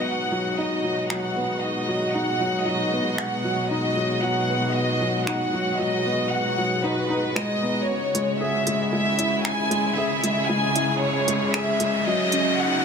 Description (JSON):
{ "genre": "piano and strings electronica", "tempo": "115 BPM", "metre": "4/4", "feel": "straight", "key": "G# minor", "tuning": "A4 = 439 Hz", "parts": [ { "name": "dark symphonic string section", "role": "sustained chords", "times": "0.0-12.8 s", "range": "B2 to G#4", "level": "-28 LUFS", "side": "equal", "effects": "none" }, { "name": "felt-muted upright piano", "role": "riff", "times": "0.0-12.8 s", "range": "F#3 to G#4", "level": "-26 LUFS", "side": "equal", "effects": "ping-pong delay" }, { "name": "round analog bass", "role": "bass", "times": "0.0-12.8 s", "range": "none", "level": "barely audible", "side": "none", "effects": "none" }, { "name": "rich studio violin section", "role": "melody", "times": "0.1-12.8 s", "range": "B4 to G#5", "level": "-25 LUFS", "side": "equal", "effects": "none" }, { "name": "deep house drum kit", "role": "drums", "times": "1.1-12.4 s", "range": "finger snaps, hi-hat", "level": "-31 LUFS", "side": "right 1 dB", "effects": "none" }, { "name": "riser", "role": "sound effects", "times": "9.1-12.8 s", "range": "none", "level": "-33 LUFS", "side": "left 1 dB", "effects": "none" } ], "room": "moderate huge ambient reverb, RT60 6.9 s", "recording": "none", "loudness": "-21 LUFS", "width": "side -6 dB against mid", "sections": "0.0-12.8 A section", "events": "build-up 0.0-12.8; riser 9.1-12.8", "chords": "0.0 G#m7; 7.9 C#m/G#; 12.1 Badd9/G#", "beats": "0.06 0.58 1.11 | 1.63 2.15 2.67 3.19 | 3.71 4.24 4.76 5.28 | 5.80 6.32 6.84 7.37 | 7.89 8.41 8.93 9.45 | 9.98 10.50 11.02 11.54 | 12.06 12.58" }